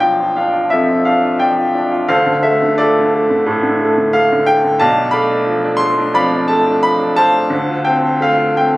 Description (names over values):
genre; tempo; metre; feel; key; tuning
classical, lyrical solo piano; 88 BPM; 4/4; rubato; unclear; A4 = 439 Hz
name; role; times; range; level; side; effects
clear grand piano; solo; 0.0-8.8 s; B1 to C6; -12 LUFS; equal; none
room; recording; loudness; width
light reverb; recorded on a phone in the room, club reverb, compression; -12 LUFS; side -18 dB against mid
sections
0.0-8.8 A section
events
none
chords
0.0 Bm7b5; 2.1 Dm7; 4.8 Bm7b5; 7.5 Dm7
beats
0.01 0.72 1.41 | 2.09 2.78 3.46 4.14 | 4.80 5.46 6.15 6.83 | 7.51 8.20